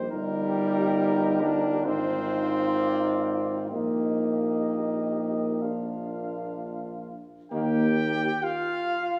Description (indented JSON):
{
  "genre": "classical, brass quintet",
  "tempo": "63-69 BPM",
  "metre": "4/4",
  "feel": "rubato",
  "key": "Eb major",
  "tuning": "A4 = 440 Hz",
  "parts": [
    { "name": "mellow trumpet", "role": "melody", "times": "0.0-9.2 s", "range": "Bb4 to G5", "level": "-36 LUFS", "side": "equal", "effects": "none" },
    { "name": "clear tuba", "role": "bass", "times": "0.0-8.3 s", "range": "G1 to Eb2", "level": "-33 LUFS", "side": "equal", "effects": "none" },
    { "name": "mellow flugelhorn", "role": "second line", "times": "0.1-9.2 s", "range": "F4 to G4", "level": "-37 LUFS", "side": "equal", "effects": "none" },
    { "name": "clear French horn", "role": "accompaniment", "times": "0.1-7.9 s", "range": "Bb3 to Eb4", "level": "-33 LUFS", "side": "equal", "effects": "none" },
    { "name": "clear trombone", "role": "accompaniment", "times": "0.1-7.9 s", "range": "Eb3 to D4", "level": "-31 LUFS", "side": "equal", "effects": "none" }
  ],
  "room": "wet recital hall reverb, RT60 1.9 s",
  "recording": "small room ambience",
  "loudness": "-27 LUFS",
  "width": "mono",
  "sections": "0.0-7.5 A section; 7.5-9.2 B section",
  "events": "none",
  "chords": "0.1 Eb/G; 1.9 Fm7/Ab; 3.7 Eb/Bb; 5.6 Bb; 7.5 Eb"
}